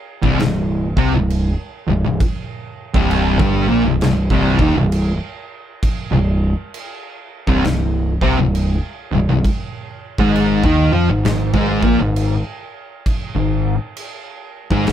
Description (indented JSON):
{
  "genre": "stoner and doom metal",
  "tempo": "66 BPM",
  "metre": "4/4",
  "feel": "swing 64% on 8ths",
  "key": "C minor",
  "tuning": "A4 = 438 Hz",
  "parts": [
    { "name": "thick fuzz guitar", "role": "riff", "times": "0.2-14.9 s", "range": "C2 to F4", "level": "-19 LUFS", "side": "left 6 dB", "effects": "distortion" },
    { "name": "thick fuzz guitar", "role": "riff", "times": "0.2-14.9 s", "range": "C2 to F4", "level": "-20 LUFS", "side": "right 5 dB", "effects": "distortion" },
    { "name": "growling picked electric bass", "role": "bass", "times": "0.2-14.9 s", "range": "C1 to F2", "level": "-19 LUFS", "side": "equal", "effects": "overdrive" },
    { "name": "big rock drum kit", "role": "drums", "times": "0.2-14.9 s", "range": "crash cymbal, kick drum, snare drum", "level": "-23 LUFS", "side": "right 1 dB", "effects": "none" }
  ],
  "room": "light reverb",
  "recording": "band playing live in one room",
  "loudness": "-15 LUFS",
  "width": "side -10 dB against mid",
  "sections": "0.0-14.9 A section",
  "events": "none",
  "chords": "0.0 C5; 9.4 Ab5"
}